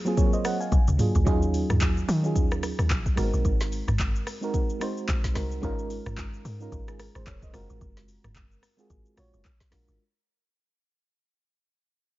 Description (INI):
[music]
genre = amapiano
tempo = 110 BPM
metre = 4/4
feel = swing 58% on 16ths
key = Eb dorian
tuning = A4 = 441 Hz
[part]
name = mellow FM electric piano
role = accompaniment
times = 0.0-10.0 s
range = Gb3 to Ab5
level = -30 LUFS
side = right 2 dB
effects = chorus, tremolo
[part]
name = afro-pop drum kit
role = drums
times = 0.1-10.0 s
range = handclaps, hi-hat, kick drum, rim click, shaker, snare drum, toms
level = -26 LUFS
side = equal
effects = none
[part]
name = deep log drum bass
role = bass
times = 0.7-10.0 s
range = F1 to Eb3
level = -28 LUFS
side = equal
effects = none
[sound]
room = little or no reverb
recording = nothing above 7.5 kHz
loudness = -23 LUFS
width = side -17 dB against mid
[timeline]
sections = 0.0-10.0 A section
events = drop 0.0-10.0; fade-out 0.0-10.0; drum fill 0.7-1.3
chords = 0.0 Gbmaj9#11; 0.7 Bb7b13; 1.3 Ebm11; 3.2 Ab9; 5.6 Db69/Ab; 7.5 Gbmaj9#11; 9.4 Bb7b13